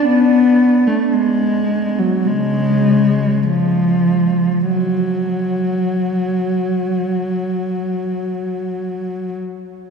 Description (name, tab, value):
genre	classical, free, expressive piece for unaccompanied cello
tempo	36-59 BPM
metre	4/4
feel	rubato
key	F# minor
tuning	A4 = 440 Hz
part	dark cello	solo	0.0-9.3 s	C#3 to B3	-15 LUFS	equal	none
room	wet cathedral reverb, RT60 6.8 s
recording	heard from further back in the room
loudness	-15 LUFS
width	side -6 dB against mid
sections	0.0-9.9 A section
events	none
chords	none